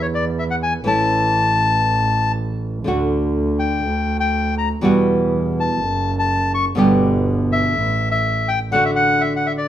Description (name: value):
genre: tango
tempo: 122 BPM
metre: 4/4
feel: rubato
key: D major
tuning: A4 = 439 Hz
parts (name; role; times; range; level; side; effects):
- bandoneon; melody; 0.0-9.7 s; C#5 to C#6; -19 LUFS; left 3 dB; none
- nylon-string guitar; accompaniment; 0.0-9.7 s; B2 to G4; -19 LUFS; right 1 dB; none
- clear double bass; bass; 0.0-8.7 s; F#1 to E2; -22 LUFS; right 2 dB; none
room: light reverb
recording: minimal, uncompressed stereo recording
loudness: -16 LUFS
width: side -11 dB against mid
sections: 0.0-9.7 A section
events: none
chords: 0.0 N.C.; 0.9 A; 2.9 D; 3.8 G5/D; 4.8 Emadd9; 5.8 F#m; 6.8 G; 7.8 A5; 8.7 D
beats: 0.37 | 0.86 1.35 1.85 2.35 | 2.85 3.35 3.85 4.34 | 4.83 5.32 5.81 6.30 | 6.78 7.27 7.76 8.25 | 8.73 9.23